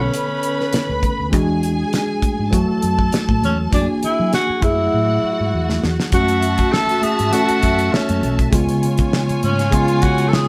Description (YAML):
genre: lush 1970s-style soul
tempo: 100 BPM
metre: 4/4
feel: swing 54% on 16ths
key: F# minor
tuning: A4 = 439 Hz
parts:
  - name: breathy tenor saxophone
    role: melody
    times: 0.0-10.5 s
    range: C#4 to A4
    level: -23 LUFS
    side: equal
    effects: none
  - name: warm studio string section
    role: second line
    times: 0.0-10.5 s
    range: E#4 to B5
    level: -26 LUFS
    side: equal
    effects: none
  - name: mellow tine electric piano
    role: accompaniment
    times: 0.0-10.5 s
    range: C#3 to A4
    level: -23 LUFS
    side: equal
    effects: none
  - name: fingered electric bass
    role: bass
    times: 0.0-10.4 s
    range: B1 to F#3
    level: -25 LUFS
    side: equal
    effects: none
  - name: damped 70s drum kit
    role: drums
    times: 0.1-10.5 s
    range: hi-hat, kick drum, snare drum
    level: -23 LUFS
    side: equal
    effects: none
  - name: congas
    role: percussion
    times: 0.3-10.0 s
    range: none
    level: -31 LUFS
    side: equal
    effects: none
room: moderate studio reverb, RT60 0.7 s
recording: band playing live in one room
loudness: -18 LUFS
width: mono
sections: 0.0-6.1 A section; 6.1-10.5 B section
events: drum fill 4.9-6.1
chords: 0.0 Bm9; 1.3 E9; 2.5 F#m7; 3.7 F#7b13; 4.6 F#m9; 6.1 F#m7; 8.5 C#7